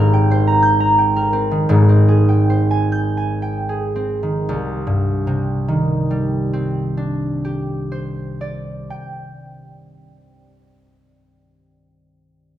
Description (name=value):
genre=classical, solo harp piece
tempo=35-62 BPM (dotted quarters)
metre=6/8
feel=rubato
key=C minor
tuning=A4 = 440 Hz
part: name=concert harp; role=solo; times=0.0-11.7 s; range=Ab1 to G6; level=-16 LUFS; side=equal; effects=none
room=wet recital hall reverb, RT60 1.4 s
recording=minimal, uncompressed stereo recording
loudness=-15 LUFS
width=side -12 dB against mid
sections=0.0-4.5 A section; 4.5-10.3 B section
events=slowing down 0.0-4.5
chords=0.0 Abmaj9; 1.7 Abmaj7; 4.5 Cmadd9